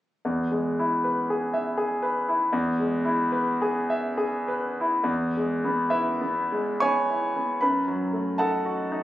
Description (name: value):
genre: classical, romantic nocturne for solo piano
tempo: 62-82 BPM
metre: 3/4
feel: rubato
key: E major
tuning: A4 = 441 Hz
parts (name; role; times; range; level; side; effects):
- clear concert grand piano; solo; 0.2-9.0 s; E2 to C#6; -23 LUFS; equal; none
room: light reverb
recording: recorded on a phone in the room, studio ambience, compression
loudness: -23 LUFS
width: side -14 dB against mid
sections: 0.3-5.1 A section; 5.1-9.0 B section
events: none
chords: 0.3 E; 7.6 D#dim/F#